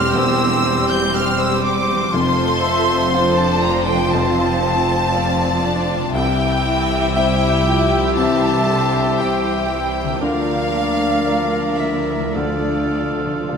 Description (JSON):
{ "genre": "cinematic, emotional film score for orchestra", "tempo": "59 BPM", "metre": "4/4", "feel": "rubato", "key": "unclear", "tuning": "A4 = 440 Hz", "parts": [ { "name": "rich studio violin section", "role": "melody", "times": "0.0-13.5 s", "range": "D5 to G6", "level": "-24 LUFS", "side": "left 1 dB", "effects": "none" }, { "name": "mellow silver concert flute", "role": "second line", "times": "0.0-13.5 s", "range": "D5 to G6", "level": "-26 LUFS", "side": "equal", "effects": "none" }, { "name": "rich studio violin section", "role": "second line", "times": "0.0-13.6 s", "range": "F4 to E5", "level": "-25 LUFS", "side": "left 6 dB", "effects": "none" }, { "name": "warm clarinet", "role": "second line", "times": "0.0-13.6 s", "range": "F4 to Bb4", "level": "-27 LUFS", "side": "equal", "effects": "none" }, { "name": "warm cor anglais", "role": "second line", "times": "0.0-13.6 s", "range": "C5 to F5", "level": "-26 LUFS", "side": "right 4 dB", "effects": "none" }, { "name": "dark baby grand piano", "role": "accompaniment", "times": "0.0-13.6 s", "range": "E1 to E5", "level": "-25 LUFS", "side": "left 4 dB", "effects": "none" }, { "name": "warm studio viola section", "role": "accompaniment", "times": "0.0-13.6 s", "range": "D3 to E5", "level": "-25 LUFS", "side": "right 4 dB", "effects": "none" }, { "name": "mellow French horn section", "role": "sustained chords", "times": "0.0-13.6 s", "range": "F3 to E4", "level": "-24 LUFS", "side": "left 5 dB", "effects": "none" }, { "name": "concert harp", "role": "arpeggios", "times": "0.0-13.6 s", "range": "C3 to E5", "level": "-30 LUFS", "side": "left 6 dB", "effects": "none" }, { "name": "rich studio cello section", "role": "bass", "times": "0.0-13.6 s", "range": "C2 to F2", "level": "-26 LUFS", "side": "right 3 dB", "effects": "none" }, { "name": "rich studio double bass section", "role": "bass", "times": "0.0-13.6 s", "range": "E1 to D2", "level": "-25 LUFS", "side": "right 4 dB", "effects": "none" }, { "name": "timpani", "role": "percussion", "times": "12.4-13.6 s", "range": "D3", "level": "-30 LUFS", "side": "right 1 dB", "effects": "none" } ], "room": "wet scoring stage reverb, RT60 1.7 s", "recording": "none", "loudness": "-15 LUFS", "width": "side -6 dB against mid", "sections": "0.0-13.6 A section", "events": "timpani fill 12.4-13.6", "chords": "0.0 C/E; 2.1 F; 6.1 C; 10.2 Bb/D; 12.4 Dm" }